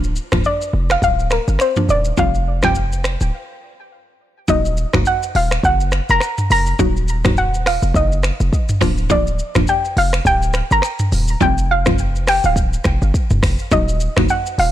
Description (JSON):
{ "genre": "afrobeats", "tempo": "104 BPM", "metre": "4/4", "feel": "swing 58% on 16ths", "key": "unclear", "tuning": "A4 = 440 Hz", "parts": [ { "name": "mallet-like synth pluck", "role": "accompaniment", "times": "0.0-14.4 s", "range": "F3 to Gb4", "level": "-21 LUFS", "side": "equal", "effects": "chorus" }, { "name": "hard-hitting 808-style bass", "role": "bass", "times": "0.0-14.7 s", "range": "D1 to G1", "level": "-18 LUFS", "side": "equal", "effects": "none" }, { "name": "afro-pop drum kit", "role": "drums", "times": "0.0-14.7 s", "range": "finger snaps, hi-hat, kick drum, rim click, shaker, toms", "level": "-20 LUFS", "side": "equal", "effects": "soft clipping on snare" }, { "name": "soft round pluck", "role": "melody", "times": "0.5-14.7 s", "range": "Bb4 to Bb5", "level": "-18 LUFS", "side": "equal", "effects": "chorus, digital delay" } ], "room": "little or no reverb", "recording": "blown-out, overdriven recording, overdrive", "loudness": "-14 LUFS", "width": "side -12 dB against mid", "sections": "0.0-4.5 A section; 4.5-14.7 B section", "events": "break 3.3-4.5", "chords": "0.0 Bb/D; 2.2 Fsus2; 4.5 Ebm; 8.8 Bb/D; 11.4 Fsus2; 13.7 Ebm" }